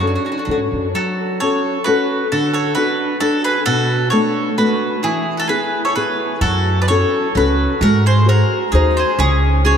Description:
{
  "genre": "italian folk, Italian serenade",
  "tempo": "131 BPM",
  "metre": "3/4",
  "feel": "swing 54% on 8ths, rubato",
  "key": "F# minor",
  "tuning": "A4 = 440 Hz",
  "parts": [
    { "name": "bowl-back mandolin", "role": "melody", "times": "0.0-9.8 s", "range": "F#4 to D5", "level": "-20 LUFS", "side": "equal", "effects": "none" },
    { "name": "bowl-back mandolin", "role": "second line", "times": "0.0-9.8 s", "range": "C#4 to B4", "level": "-24 LUFS", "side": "right 5 dB", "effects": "none" },
    { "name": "nylon-string guitar", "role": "accompaniment", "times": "0.0-9.8 s", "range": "B2 to B#4", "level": "-18 LUFS", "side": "left 2 dB", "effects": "none" },
    { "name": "upright bass", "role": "bass", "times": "0.0-0.9, 6.4-9.8 s", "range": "C#2 to G#2", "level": "-16 LUFS", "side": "right 1 dB", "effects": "none" }
  ],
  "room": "wet cathedral reverb, RT60 6.2 s",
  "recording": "in a vast, echoing space",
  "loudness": "-14 LUFS",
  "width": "side -8 dB against mid",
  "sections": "0.9-9.8 A section",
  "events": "none",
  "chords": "0.0 F#m; 2.3 D; 3.7 Bm7; 5.0 E; 6.4 F#m; 7.8 G#7; 9.2 C#sus4"
}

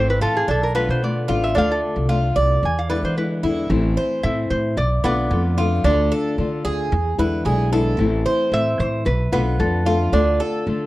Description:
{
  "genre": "latin",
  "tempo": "112 BPM",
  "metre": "4/4",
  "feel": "straight",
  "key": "A harmonic minor from 3.7 s",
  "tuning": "A4 = 438 Hz",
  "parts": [
    { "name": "metal-body resonator slide guitar", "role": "melody", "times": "0.0-10.0 s", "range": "G#4 to G#5", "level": "-24 LUFS", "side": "equal", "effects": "none" },
    { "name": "flamenco guitar", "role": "accompaniment", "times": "0.0-10.9 s", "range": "D3 to F4", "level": "-23 LUFS", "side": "left 3 dB", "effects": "none" },
    { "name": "Cuban tres", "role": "arpeggios", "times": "0.0-10.9 s", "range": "B3 to D5", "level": "-23 LUFS", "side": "right 2 dB", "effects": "none" },
    { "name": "upright bass", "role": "bass", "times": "0.0-10.9 s", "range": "G#1 to E3", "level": "-21 LUFS", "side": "equal", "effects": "none" }
  ],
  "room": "studio reverb",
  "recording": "dry, close 1970s-style studio recording",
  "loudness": "-17 LUFS",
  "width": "side -17 dB against mid",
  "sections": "0.0-3.7 A section; 3.7-10.9 B section",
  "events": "resonator guitar played with a steel bar solo 0.0-3.7",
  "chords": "0.5 Bm7b5; 1.6 Dm; 2.6 E7; 3.7 Am; 4.8 Bm7b5; 5.8 Dm; 6.9 E7; 8.0 Am; 9.1 Bm7b5; 10.1 Dm"
}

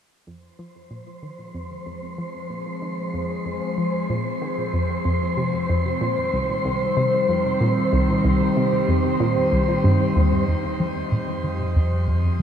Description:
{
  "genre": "ambient, sequencer-driven space music",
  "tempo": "94 BPM",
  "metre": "4/4",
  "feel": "straight",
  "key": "F minor",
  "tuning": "A4 = 439 Hz",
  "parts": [
    { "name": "evolving wavetable pad", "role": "sustained chords", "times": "1.4-12.4 s", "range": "Eb3 to C5", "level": "-23 LUFS", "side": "equal", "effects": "chorus, built-in reverb, phaser" },
    { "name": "analog pluck", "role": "riff", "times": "0.3-12.4 s", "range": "C2 to F3", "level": "-24 LUFS", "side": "equal", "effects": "chorus, cassette tape, analog delay" },
    { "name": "wind-like tuned noise texture", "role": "texture", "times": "1.0-12.4 s", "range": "C5", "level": "-29 LUFS", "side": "equal", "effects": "built-in reverb" },
    { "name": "analog drone", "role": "bass", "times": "11.4-12.4 s", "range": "F2", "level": "-23 LUFS", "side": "equal", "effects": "chorus" }
  ],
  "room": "wet shimmer reverb, RT60 8.7 s",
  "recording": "dark, warm production",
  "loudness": "-19 LUFS",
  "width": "side -9 dB against mid",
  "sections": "0.3-10.5 A section; 10.5-12.4 B section",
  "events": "fade-in on synth arpeggio sound 0.3-10.5; fade-in on ambient pad 0.3-10.5",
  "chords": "0.3 Fm; 5.4 Cm; 10.5 Fm"
}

